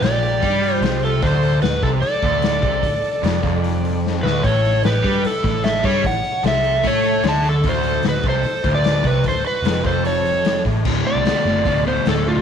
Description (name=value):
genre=blues rock power trio and southern rock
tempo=150 BPM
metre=4/4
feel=straight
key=unclear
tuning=A4 = 440 Hz
part: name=overdriven slide guitar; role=melody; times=0.0-12.4 s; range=F4 to A5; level=-20 LUFS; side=left 1 dB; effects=none
part: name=nasal lead guitar with a parked wah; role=second line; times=0.0-10.6 s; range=E4 to E5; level=-29 LUFS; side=right 10 dB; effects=overdrive
part: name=overdriven semi-hollow guitar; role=riff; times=0.0-12.4 s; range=D2 to A3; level=-20 LUFS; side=right 1 dB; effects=none
part: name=vintage muted picked electric bass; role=bass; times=0.0-12.4 s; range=D1 to A2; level=-25 LUFS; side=right 1 dB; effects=none
part: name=raw garage drum kit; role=drums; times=0.0-12.2 s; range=crash cymbal, hi-hat, kick drum, snare drum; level=-24 LUFS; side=left 4 dB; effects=none
room=moderate echo chamber reverb, RT60 1.3 s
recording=1960s-style stereo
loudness=-16 LUFS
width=side -8 dB against mid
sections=0.0-10.9 A section; 10.9-12.4 B section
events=drum fill 4.0-4.4; electric slide guitar solo 10.9-12.4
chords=0.0 G5; 1.2 D5; 4.4 A7; 7.6 D7; 10.1 A; 10.9 D